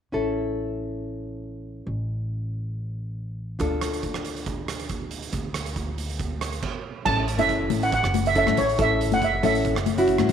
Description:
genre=calypso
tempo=139 BPM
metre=4/4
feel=swing 53% on 16ths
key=A major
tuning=A4 = 440 Hz
part: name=nylon-string guitar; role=accompaniment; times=0.1-10.3 s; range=C#4 to A4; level=-26 LUFS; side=left 1 dB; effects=none
part: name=upright bass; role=bass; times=0.1-10.3 s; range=F#1 to A2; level=-30 LUFS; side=equal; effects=none
part: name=oversized low-tuned drum kit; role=drums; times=3.6-10.3 s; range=crash cymbal, hi-hat, kick drum, rim click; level=-30 LUFS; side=right 4 dB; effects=none
part: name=steel pan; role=melody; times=7.1-9.8 s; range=C#5 to A5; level=-23 LUFS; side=right 3 dB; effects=slapback echo
part: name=congas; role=percussion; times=7.1-10.3 s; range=none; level=-28 LUFS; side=left 13 dB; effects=none
room=moderate plate reverb, RT60 1.9 s, small room ambience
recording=1960s-style stereo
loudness=-23 LUFS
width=side -8 dB against mid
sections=0.1-7.1 A section; 7.1-10.3 B section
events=stop 6.6-7.1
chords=0.1 A; 3.6 Dm; 7.1 A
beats=| 0.13 0.56 1.00 1.43 | 1.86 2.30 2.73 3.16 | 3.60 4.03 4.46 4.89 | 5.33 5.76 6.19 6.62 | 7.05 7.49 7.92 8.35 | 8.78 9.21 9.64 10.08

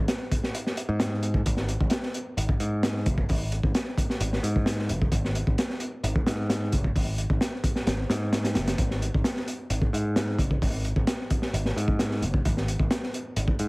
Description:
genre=breakbeat, breaks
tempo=131 BPM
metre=4/4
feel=straight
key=unclear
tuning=A4 = 443 Hz
part: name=modern bright picked electric bass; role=bass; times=0.0-13.7 s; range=F#1 to G#2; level=-27 LUFS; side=equal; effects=none
part: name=crunchy breakbeat drum kit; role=drums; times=0.1-13.7 s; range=hi-hat, kick drum, snare drum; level=-26 LUFS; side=equal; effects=none
room=little or no reverb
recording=heavily compressed radio sound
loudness=-24 LUFS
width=side -27 dB against mid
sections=0.0-13.7 A section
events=none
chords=none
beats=0.08 0.54 1.00 | 1.46 1.92 2.37 2.83 | 3.29 3.75 4.21 4.66 | 5.12 5.58 6.04 6.50 | 6.95 7.41 7.87 8.33 | 8.79 9.24 9.70 10.16 | 10.62 11.07 11.53 11.99 | 12.45 12.91 13.37

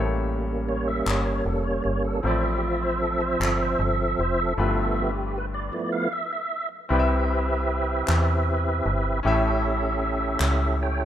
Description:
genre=slow gospel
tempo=51 BPM (dotted quarters)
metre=6/8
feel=straight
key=C major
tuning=A4 = 440 Hz
part: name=clear concert grand piano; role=accompaniment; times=0.0-11.1 s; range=G2 to E5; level=-31 LUFS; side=left 4 dB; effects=none
part: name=tonewheel organ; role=sustained chords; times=0.0-11.1 s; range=F3 to G5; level=-25 LUFS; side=right 2 dB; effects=slow rotary speaker, chorus vibrato
part: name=metallic FM bass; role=bass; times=0.0-11.1 s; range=F1 to E2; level=-26 LUFS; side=equal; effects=none
part: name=group handclap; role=percussion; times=1.1-3.8, 8.1-10.8 s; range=none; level=-30 LUFS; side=left 3 dB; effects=none
room=light reverb, small room ambience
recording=rough home demo mix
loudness=-22 LUFS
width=side -10 dB against mid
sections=0.0-6.9 A section; 6.9-11.1 B section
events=tonewheel organ solo 0.0-6.9; stop 5.7-6.9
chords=0.0 A7b9; 2.2 Dm9/A; 4.6 G13; 6.9 Cmaj7; 9.2 A7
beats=1.07 | 2.24 3.41 | 4.58 5.74 | 6.91 8.08 | 9.24 10.41

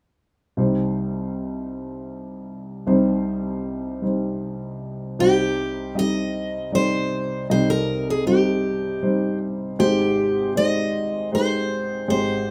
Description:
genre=acoustic folk-pop ballad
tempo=78 BPM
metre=3/4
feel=straight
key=C minor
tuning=A4 = 440 Hz
part: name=dark upright piano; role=accompaniment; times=0.6-12.5 s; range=Ab1 to Eb5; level=-25 LUFS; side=equal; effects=none
part: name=picked steel-string acoustic guitar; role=melody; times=5.2-12.5 s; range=G4 to Eb5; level=-25 LUFS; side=equal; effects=none
room=light reverb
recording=none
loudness=-22 LUFS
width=mono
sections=0.6-5.2 A section; 5.2-12.5 B section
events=none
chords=0.6 Cm; 9.8 Abmaj7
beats=| 0.56 1.33 2.10 | 2.87 3.64 4.41 | 5.18 5.95 6.72 | 7.49 8.26 9.03 | 9.79 10.56 11.33 | 12.10

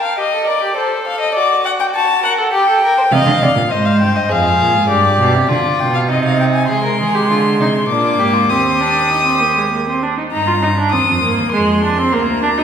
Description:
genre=classical, baroque-style fugue for string quartet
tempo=100 BPM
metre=3/4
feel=straight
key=C minor, Eb major from 6.7 s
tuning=A4 = 440 Hz
part: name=warm violin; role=melody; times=0.0-12.6 s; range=C5 to Eb6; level=-16 LUFS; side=left 3 dB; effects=none
part: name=warm violin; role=second line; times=0.0-10.0 s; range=D4 to Eb5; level=-18 LUFS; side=equal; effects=none
part: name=rich cello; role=bass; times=3.1-12.6 s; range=D2 to Eb3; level=-18 LUFS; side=right 2 dB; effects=none
part: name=rich viola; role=accompaniment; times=6.7-12.6 s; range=Ab3 to F4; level=-16 LUFS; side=right 2 dB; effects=none
room=wet recital hall reverb, RT60 1.7 s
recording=recorded in a church or concert hall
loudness=-12 LUFS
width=side -8 dB against mid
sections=0.0-6.7 A section; 6.7-10.3 B section; 10.3-12.6 C section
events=none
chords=0.0 Gm; 0.8 Adim; 1.4 D/F#; 2.5 Gm; 3.1 Cm; 4.3 Fmadd11; 4.9 G7; 6.1 Cm; 6.7 Ab; 7.9 Bb7; 8.5 Eb; 10.3 Eb/G; 11.5 Fm; 12.1 Bb/D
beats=0.17 0.77 | 1.35 1.94 2.53 | 3.11 3.71 4.30 | 4.90 5.50 6.09 | 6.70 7.30 7.90 | 8.50 9.10 9.71 | 10.32 10.93 11.53 | 12.13

